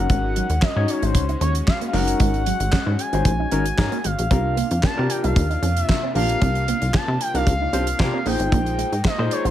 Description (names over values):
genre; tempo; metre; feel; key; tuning
early-eighties boogie funk; 114 BPM; 4/4; straight; unclear; A4 = 439 Hz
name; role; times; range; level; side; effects
expressive portamento lead; melody; 0.0-9.5 s; C5 to A5; -26 LUFS; left 1 dB; chorus, slapback echo
overdriven tine electric piano; accompaniment; 0.0-9.5 s; C4 to Db5; -26 LUFS; left 2 dB; analog chorus
brassy analog pad; sustained chords; 0.0-9.5 s; C3 to Gb4; -32 LUFS; left 1 dB; chorus
plucky analog bass; bass; 0.0-9.5 s; Gb1 to C3; -22 LUFS; equal; none
electric guitar with an envelope filter; riff; 0.1-9.5 s; Gb3 to F4; -31 LUFS; right 8 dB; wide subtle chorus
damped 70s drum kit; drums; 0.1-9.5 s; handclaps, hi-hat, kick drum, snare drum; -22 LUFS; equal; none
room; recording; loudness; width
small room ambience; none; -18 LUFS; side -12 dB against mid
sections
0.0-9.5 A section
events
none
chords
0.0 Ab9sus4; 4.3 C9sus4; 8.3 Bb9sus4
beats
| 0.10 0.62 1.15 1.68 | 2.20 2.73 3.26 3.78 | 4.31 4.83 5.36 5.89 | 6.41 6.94 7.47 7.99 | 8.52 9.04